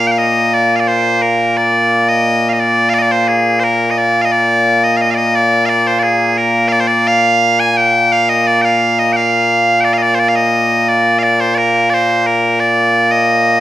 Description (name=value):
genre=scottish traditional, Scottish pipe music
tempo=87 BPM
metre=2/4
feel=straight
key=Bb mixolydian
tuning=A4 = 439 Hz
part: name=loud bright bagpipes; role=solo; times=0.0-13.6 s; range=Bb2 to Ab5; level=-10 LUFS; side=equal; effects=none
room=wet recital hall reverb, RT60 1.6 s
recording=none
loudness=-10 LUFS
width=side -13 dB against mid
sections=0.0-1.6 A section; 1.6-12.6 B section; 12.6-13.6 B section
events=none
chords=none